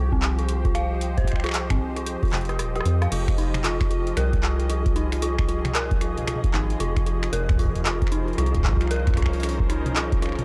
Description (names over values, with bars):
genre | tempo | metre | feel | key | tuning
IDM | 114 BPM | 4/4 | swing 62% on 16ths | F minor | A4 = 440 Hz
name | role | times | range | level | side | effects
warm analog pad | sustained chords | 0.0-10.4 s | F3 to Eb5 | -34 LUFS | equal | lush chorus, sidechain pumping
rubbery square bass | bass | 0.0-10.4 s | Eb1 to F2 | -28 LUFS | equal | transformer saturation
flickering grainy texture | texture | 0.0-10.4 s | Eb4 to G5 | -43 LUFS | equal | none
dark detuned synth bell | arpeggios | 0.1-10.4 s | C4 to F5 | -32 LUFS | equal | chorus, analog delay
electronic kick drum | drums | 0.1-10.2 s | none | -26 LUFS | equal | none
booming analog drum machine | drums | 0.2-10.4 s | crash cymbal, finger snaps, handclaps, hi-hat, rim click, toms | -32 LUFS | equal | none
room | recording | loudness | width
little or no reverb | dry, gritty hardware recording, cassette tape | -24 LUFS | mono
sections
0.0-3.1 A section; 3.1-10.4 B section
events
drum fill 2.3-3.1; kick drops out 2.6-3.1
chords
0.0 Cm; 3.1 Fm7; 7.3 Bbmadd9/F